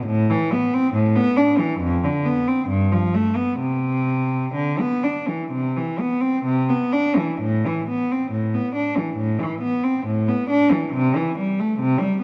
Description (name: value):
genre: classical, baroque-style suite movement for unaccompanied cello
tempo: 61-71 BPM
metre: 4/4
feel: rubato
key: C major, A minor from 7.4 s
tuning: A4 = 437 Hz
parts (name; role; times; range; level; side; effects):
- rich cello; solo; 0.0-12.2 s; F2 to D4; -21 LUFS; equal; none
room: wet recital hall reverb, RT60 1.7 s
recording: dark, warm production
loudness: -21 LUFS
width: mono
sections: 0.0-7.4 A section; 7.4-12.2 A section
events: none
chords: none